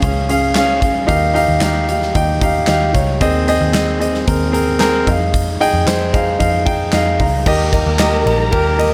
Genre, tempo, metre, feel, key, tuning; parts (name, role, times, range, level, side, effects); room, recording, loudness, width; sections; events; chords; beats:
piano-driven pop; 113 BPM; 4/4; straight; Eb mixolydian; A4 = 436 Hz
warm grand piano; accompaniment; 0.0-8.9 s; Db3 to Bb5; -18 LUFS; equal
vintage muted picked electric bass; bass; 0.0-8.9 s; Bb1 to F2; -22 LUFS; equal
huge arena drum kit; drums; 0.0-8.9 s; crash cymbal, handclaps, hi-hat, kick drum, ride cymbal, snare drum; -22 LUFS; equal
dark studio violin section; second line; 7.5-8.9 s; Bb4 to Bb5; -25 LUFS; equal
group handclap; percussion; 8.0-8.1 s; barely audible
light reverb; -15 LUFS; mono
0.0-7.5 A section; 7.5-8.9 B section
grand piano fill 5.9-7.5
0.0 Db; 1.1 Ebadd9; 3.2 Ab/Eb; 5.1 Fm7; 7.5 Eb
0.02 0.55 | 1.09 1.62 2.15 2.68 | 3.21 3.74 4.27 4.80 | 5.34 5.87 6.40 6.93 | 7.46 7.99 8.52